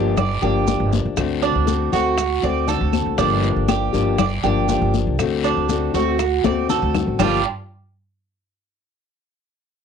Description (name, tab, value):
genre	latin, Cuban son and guajira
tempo	120 BPM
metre	4/4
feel	straight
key	G minor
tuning	A4 = 439 Hz
part	fingerpicked plugged-in steel-string acoustic guitar	accompaniment	0.0-7.4 s	G2 to G4	-22 LUFS	left 9 dB	cassette tape
part	Cuban tres	arpeggios	0.0-7.4 s	G3 to D5	-22 LUFS	right 13 dB	cassette tape
part	upright bass	bass	0.0-7.4 s	G1 to D2	-23 LUFS	right 2 dB	transformer saturation
part	bongos	percussion	0.2-7.3 s	none	-30 LUFS	left 10 dB	none
part	claves	percussion	0.2-7.3 s	none	-31 LUFS	right 17 dB	none
part	congas	percussion	0.2-7.3 s	none	-25 LUFS	left 9 dB	none
part	guiro	percussion	0.2-7.3 s	none	-35 LUFS	left 13 dB	none
part	maracas	percussion	0.2-7.3 s	none	-36 LUFS	right 16 dB	none
room	moderate studio reverb, RT60 0.5 s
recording	home recording on cassette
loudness	-17 LUFS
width	side -7 dB against mid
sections	0.0-7.2 A section; 7.2-9.2 B section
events	drum fill 6.4-7.2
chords	0.0 Gm7; 1.2 D7; 3.2 Gm7; 5.2 D7; 7.2 G7(no3)